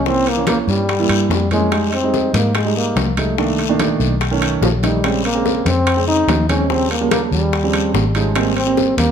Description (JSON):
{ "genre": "Afro-Cuban jazz", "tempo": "145 BPM", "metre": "4/4", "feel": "straight", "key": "unclear", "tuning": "A4 = 445 Hz", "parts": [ { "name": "breathy trombone", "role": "melody", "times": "0.0-9.1 s", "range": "F3 to Eb4", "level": "-19 LUFS", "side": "left 2 dB", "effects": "slapback echo, plate reverb" }, { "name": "vintage muted fingered electric bass", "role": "bass", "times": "0.0-9.1 s", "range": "Ab1 to Ab2", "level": "-20 LUFS", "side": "left 1 dB", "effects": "none" }, { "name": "dark grand piano", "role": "accompaniment", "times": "0.1-9.1 s", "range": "Bb2 to E4", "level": "-20 LUFS", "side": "right 7 dB", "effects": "none" }, { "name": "bongos", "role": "percussion", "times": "0.1-9.0 s", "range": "none", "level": "-25 LUFS", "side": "left 8 dB", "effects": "none" }, { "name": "congas", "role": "percussion", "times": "0.1-9.1 s", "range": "none", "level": "-26 LUFS", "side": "left 4 dB", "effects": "none" }, { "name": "guiro", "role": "percussion", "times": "0.1-9.1 s", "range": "none", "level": "-28 LUFS", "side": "left 9 dB", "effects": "none" }, { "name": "timbales", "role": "percussion", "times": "0.3-9.1 s", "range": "none", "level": "-26 LUFS", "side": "right 4 dB", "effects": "none" } ], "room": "moderate large studio reverb, RT60 0.8 s", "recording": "none", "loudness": "-14 LUFS", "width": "side -8 dB against mid", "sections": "0.0-9.1 A section", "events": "drum fill 4.4-5.0", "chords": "0.1 C7b9; 1.7 Fm7; 3.4 Cm7; 4.2 B9; 5.0 Bbm7; 6.7 Eb13; 8.4 Abmaj9" }